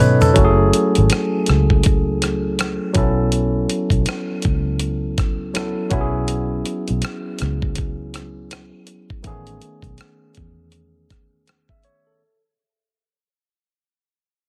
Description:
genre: R&B, neo-soul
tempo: 81 BPM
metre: 4/4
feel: swing 60% on 16ths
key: F# dorian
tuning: A4 = 442 Hz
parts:
  - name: barky tine electric piano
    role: accompaniment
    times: 0.0-12.4 s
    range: D#3 to E5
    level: -23 LUFS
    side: equal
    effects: overdrive
  - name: vintage muted fingered electric bass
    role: bass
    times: 0.0-11.7 s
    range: F#1 to B2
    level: -22 LUFS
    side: equal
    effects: none
  - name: dusty soul sampler-style drum kit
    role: drums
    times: 0.2-12.0 s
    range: hi-hat, kick drum, rim click, toms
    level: -22 LUFS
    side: equal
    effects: soft clipping on snare
room: light reverb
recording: dense, heavily limited modern master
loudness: -19 LUFS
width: mono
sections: 0.4-12.2 A section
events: drum fill 0.0-0.4; fade-out 0.4-12.2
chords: 0.4 F#m9; 3.0 B9sus4; 5.9 E69/B; 9.2 Amaj9#11

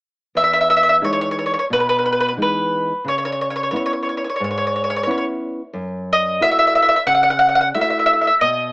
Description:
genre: italian folk, Italian serenade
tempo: 89 BPM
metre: 4/4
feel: swing 55% on 8ths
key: E major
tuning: A4 = 440 Hz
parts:
  - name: mandolin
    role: melody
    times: 0.4-8.7 s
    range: B4 to F#5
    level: -15 LUFS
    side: equal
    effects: cassette tape
  - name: nylon-string guitar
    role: accompaniment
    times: 0.4-8.7 s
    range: E2 to F#4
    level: -25 LUFS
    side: equal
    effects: cassette tape
room: moderate spring reverb, RT60 1.3 s, small room reverb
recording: home recording on cassette, small speaker sound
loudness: -15 LUFS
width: side -36 dB against mid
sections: 0.3-8.7 A section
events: none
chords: 0.3 Emaj7; 3.0 C#m7; 5.7 F#m7

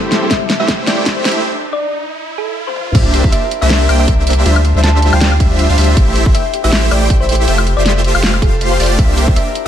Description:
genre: future bass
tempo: 159 BPM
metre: 4/4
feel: swing 55% on 16ths, half-time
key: unclear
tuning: A4 = 439 Hz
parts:
  - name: felt-muted upright piano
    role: accompaniment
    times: 0.0-1.5 s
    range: G3 to A4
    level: -24 LUFS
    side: left 3 dB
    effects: none
  - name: ethereal airy pad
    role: sustained chords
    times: 0.0-1.4 s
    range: C3 to E5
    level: -32 LUFS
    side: left 2 dB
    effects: none
  - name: supersaw chords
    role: riff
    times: 0.0-9.7 s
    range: G3 to G5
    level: -17 LUFS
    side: right 1 dB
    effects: sidechain pumping, low-pass filter
  - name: saturated sub bass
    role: bass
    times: 0.0-9.7 s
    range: F1 to D2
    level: -13 LUFS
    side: equal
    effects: sidechain pumping, high-pass filter
  - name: riser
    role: sound effects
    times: 0.0-2.9 s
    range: none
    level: -26 LUFS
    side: right 2 dB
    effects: none
  - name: pop drum kit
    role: drums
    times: 0.1-9.6 s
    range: crash cymbal, hi-hat, snare drum, toms, woodblock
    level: -18 LUFS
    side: left 1 dB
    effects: none
  - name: thumb-piano-like synth pluck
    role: melody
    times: 0.3-9.7 s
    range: A4 to A5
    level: -21 LUFS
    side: equal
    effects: chorus, sidechain pumping, tape echo
  - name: electronic kick drum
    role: drums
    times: 0.3-9.3 s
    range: none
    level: -13 LUFS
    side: equal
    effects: none
  - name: Celtic harp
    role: arpeggios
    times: 2.9-9.7 s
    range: D4 to G5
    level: -26 LUFS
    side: left 7 dB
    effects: sidechain pumping, tape echo
  - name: airy dreamy lead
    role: arpeggios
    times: 2.9-9.7 s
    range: D5 to G5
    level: -26 LUFS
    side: equal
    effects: chorus, sidechain pumping, tape echo
room: light reverb, digital ambience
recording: high-pass filter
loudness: -10 LUFS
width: side -10 dB against mid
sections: 0.0-2.9 A section; 2.9-9.7 B section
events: build-up 0.0-2.9; drum fill 0.0-1.4, 2.7; riser 0.0-2.9; filter sweep on supersaw synth 0.0-2.9; break 1.4-2.9; drop 2.9-9.7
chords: 0.0 Am7; 1.4 N.C.; 2.9 C9; 4.5 Dm11; 6.0 Am7; 7.5 Fmaj9; 9.0 C9

